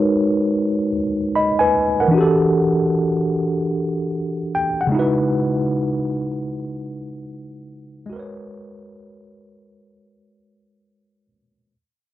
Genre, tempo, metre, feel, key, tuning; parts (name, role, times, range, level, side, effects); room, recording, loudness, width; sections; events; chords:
hip hop; free time; A4 = 440 Hz
mellow tine electric piano; solo; 0.0-11.8 s; C#3 to B5; -18 LUFS; equal; medium stereo tremolo, cassette tape, low-pass filter
moderate studio reverb, RT60 0.6 s; cassette tape, nothing above 7.5 kHz; -17 LUFS; side -13 dB against mid
0.0-11.7 A section
fade-out 0.0-11.7
0.0 G#m11; 2.1 Em11; 4.9 C#m11; 8.1 G#m11